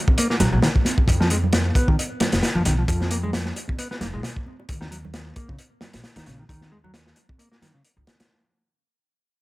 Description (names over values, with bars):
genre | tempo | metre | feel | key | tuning
breakbeat, breaks | 133 BPM | 4/4 | swing 55% on 16ths | Eb minor | A4 = 440 Hz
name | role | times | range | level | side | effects
crunchy breakbeat drum kit | drums | 0.1-8.3 s | hi-hat, kick drum, snare drum | -22 LUFS | equal | none
congas and bongos | percussion | 0.1-8.3 s | none | -32 LUFS | right 4 dB | none
mellow electric guitar | riff | 0.2-7.8 s | Db3 to Cb4 | -27 LUFS | equal | tube saturation, low-pass filter, tape echo
upright bass | bass | 0.4-8.0 s | F1 to F2 | -24 LUFS | equal | none
room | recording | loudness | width
light reverb | none | -19 LUFS | side -20 dB against mid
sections
0.0-8.3 A section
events
fade-out 0.0-8.3; filter sweep on clean electric guitar 0.0-8.3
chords
0.0 Ebm (rootless); 1.1 F(b5, no3); 4.7 Eb5